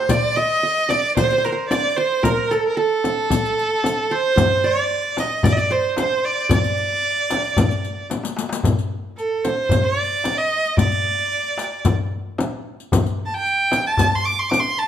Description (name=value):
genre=Arabic maqam ensemble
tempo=112 BPM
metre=4/4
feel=straight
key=D maqam hijaz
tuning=A4 = 440 Hz
part: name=clear violin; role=melody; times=0.0-14.9 s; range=A4 to D6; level=-20 LUFS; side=right 3 dB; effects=none
part: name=qanun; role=second line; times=0.0-8.1 s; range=A4 to Eb5+25c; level=-24 LUFS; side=right 2 dB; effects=none
part: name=frame drum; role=percussion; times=0.1-14.6 s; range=none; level=-23 LUFS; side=left 2 dB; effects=none
part: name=riq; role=percussion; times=0.1-14.7 s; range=none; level=-30 LUFS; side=left 8 dB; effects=none
part: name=darbuka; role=percussion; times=4.4-14.6 s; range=none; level=-24 LUFS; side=left 2 dB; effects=none
room=moderate recital hall reverb, RT60 1.2 s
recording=none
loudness=-17 LUFS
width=side -10 dB against mid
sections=0.1-8.6 A section; 8.6-14.9 B section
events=drum fill 8.1-8.6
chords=none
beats=| 0.09 0.62 1.16 1.69 | 2.23 2.77 3.30 3.83 | 4.37 4.91 5.44 5.97 | 6.51 7.04 7.58 8.11 | 8.65 9.18 9.72 10.25 | 10.79 11.32 11.86 12.39 | 12.92 13.46 13.99 14.53